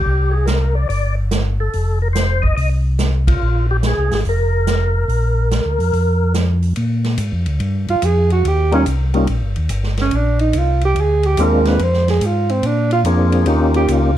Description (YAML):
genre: soul jazz organ trio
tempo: 143 BPM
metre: 4/4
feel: swing 67% on 8ths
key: Bb mixolydian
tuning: A4 = 438 Hz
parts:
  - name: percussive tonewheel organ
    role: melody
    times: 0.0-14.1 s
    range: G3 to Eb5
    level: -19 LUFS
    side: left 1 dB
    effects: slow rotary speaker, overdrive, chorus vibrato, plate reverb
  - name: mellow tonewheel organ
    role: bass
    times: 0.1-14.2 s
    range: F1 to Bb2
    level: -16 LUFS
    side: equal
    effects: slow rotary speaker
  - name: swinging big-band drum kit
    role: drums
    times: 0.5-14.0 s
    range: hi-hat, kick drum, ride cymbal, snare drum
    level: -25 LUFS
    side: right 2 dB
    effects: none
  - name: dark alto saxophone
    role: melody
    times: 7.9-14.2 s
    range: C4 to C5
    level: -18 LUFS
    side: right 4 dB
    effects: plate reverb
room: light reverb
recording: dark, warm production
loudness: -14 LUFS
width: side -12 dB against mid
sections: 0.0-6.8 A section; 6.8-14.2 B section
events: band accent 3.2; alto saxophone solo 6.8-14.2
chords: 0.1 C5; 1.7 F5; 3.4 Bb5; 6.8 Bb7; 8.4 Eb9; 10.1 Bb9; 11.8 Fm; 12.6 Bb9; 13.5 Eb9